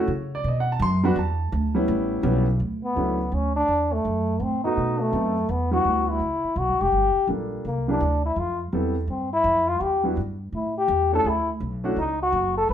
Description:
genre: jazz, small-group swing and bop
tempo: 167 BPM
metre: 4/4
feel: swing 65% on 8ths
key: D major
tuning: A4 = 440 Hz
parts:
  - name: warm grand piano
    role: accompaniment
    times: 0.0-12.0 s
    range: F#3 to C6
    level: -26 LUFS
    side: right 1 dB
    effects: none
  - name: upright bass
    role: bass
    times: 0.0-12.7 s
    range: E1 to C#3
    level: -26 LUFS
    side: right 1 dB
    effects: none
  - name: clear trombone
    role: melody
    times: 2.8-12.7 s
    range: A3 to B4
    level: -22 LUFS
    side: left 2 dB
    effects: none
room: wet studio reverb, RT60 0.7 s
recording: band playing live in one room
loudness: -21 LUFS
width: side -9 dB against mid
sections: 0.0-2.6 A section; 2.6-12.7 B section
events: none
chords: 0.4 B5; 1.2 Em7; 1.9 A9; 2.6 Dmaj9; 4.0 F#dim7; 4.8 B7b9; 5.5 Em9; 6.9 Gm7; 7.6 C9; 8.4 Fmaj9#11; 9.8 Em7; 10.5 A7; 11.2 Dmaj7

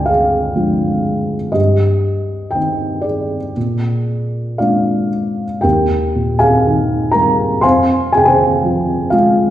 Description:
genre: classical, lyrical solo piano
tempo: 57-63 BPM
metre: 4/4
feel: rubato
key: Eb major from 5.6 s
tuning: A4 = 442 Hz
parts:
  - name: felt-muted upright piano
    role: solo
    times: 0.0-9.5 s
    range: D2 to C6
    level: -13 LUFS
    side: equal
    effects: none
room: wet recital hall reverb, RT60 1.5 s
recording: heard from further back in the room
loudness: -13 LUFS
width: side -12 dB against mid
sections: 0.0-5.6 A section; 5.6-9.5 B section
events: none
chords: 0.0 Ddim; 1.5 Cm/G; 3.6 Bb7; 5.6 Ebadd9; 7.6 Fm

